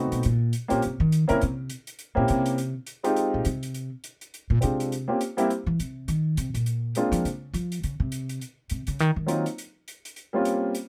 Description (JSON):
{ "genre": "jazz piano trio", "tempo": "206 BPM", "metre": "4/4", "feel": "swing 59% on 8ths", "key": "Eb mixolydian", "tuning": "A4 = 440 Hz", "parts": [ { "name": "warm grand piano", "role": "melody", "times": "0.0-7.3, 9.3-10.7 s", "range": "Gb3 to Bb4", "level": "-27 LUFS", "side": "equal", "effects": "none" }, { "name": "upright bass", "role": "bass", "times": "0.0-9.4 s", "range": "Bb2 to F3", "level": "-28 LUFS", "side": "equal", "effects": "none" }, { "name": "hi-hat", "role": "drums", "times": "0.1-10.8 s", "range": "none", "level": "-43 LUFS", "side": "equal", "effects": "none" } ], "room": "little or no reverb", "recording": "close, detailed microphones", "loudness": "-26 LUFS", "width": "mono", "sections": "0.0-7.2 A section; 7.2-10.9 A section", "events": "upright bass solo 0.0-10.9", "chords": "0.2 Eb5; 1.4 C7b9; 4.9 Gmadd11; 5.5 C; 6.1 Bbsus24; 6.7 Bb7; 7.2 Dbmaj7; 8.4 Cm; 9.6 Eb13 (rootless)", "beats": "| 0.24 0.53 0.82 1.12 | 1.41 1.70 1.99 2.28 | 2.57 2.87 3.16 3.45 | 3.74 4.03 4.32 4.62 | 4.91 5.20 5.49 5.78 | 6.07 6.37 6.66 6.95 | 7.24 7.53 7.82 8.12 | 8.41 8.70 8.99 9.28 | 9.57 9.87 10.16 10.45 | 10.74" }